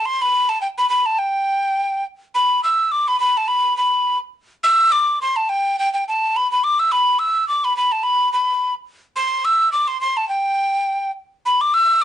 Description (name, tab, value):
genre	celtic folk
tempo	211 BPM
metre	4/4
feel	swing 56% on 8ths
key	G major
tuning	A4 = 441 Hz
part	breathy mellow mid whistle	solo	0.0-12.0 s	G5 to E6	-16 LUFS	equal	none
room	light reverb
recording	nothing above 10.3 kHz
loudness	-16 LUFS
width	side -10 dB against mid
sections	0.0-2.3 A section; 2.3-11.4 B section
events	none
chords	none